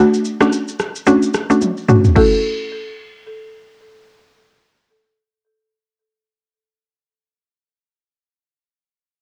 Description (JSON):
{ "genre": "afrobeats", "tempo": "110 BPM", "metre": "4/4", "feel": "swing 58% on 16ths", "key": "F# minor", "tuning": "A4 = 438 Hz", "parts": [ { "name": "folk marimba with medium mallets", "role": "melody", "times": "0.0-7.1 s", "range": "A4 to D5", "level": "-21 LUFS", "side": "equal", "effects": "low-pass filter, tape echo" }, { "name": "mallet-like synth pluck", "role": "accompaniment", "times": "0.0-7.1 s", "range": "A3 to F#4", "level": "-16 LUFS", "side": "equal", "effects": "chorus, low-pass filter, cassette tape" }, { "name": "deep house drum kit", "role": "drums", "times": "0.1-2.3 s", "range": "crash cymbal, kick drum, rim click, shaker, toms", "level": "-20 LUFS", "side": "equal", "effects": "cassette tape" } ], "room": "light reverb", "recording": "home recording on cassette", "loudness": "-15 LUFS", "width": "mono", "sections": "0.0-2.2 A section; 2.2-6.5 B section", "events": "drum fill 1.6-2.2", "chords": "0.0 Dmaj7; 2.2 F#m7" }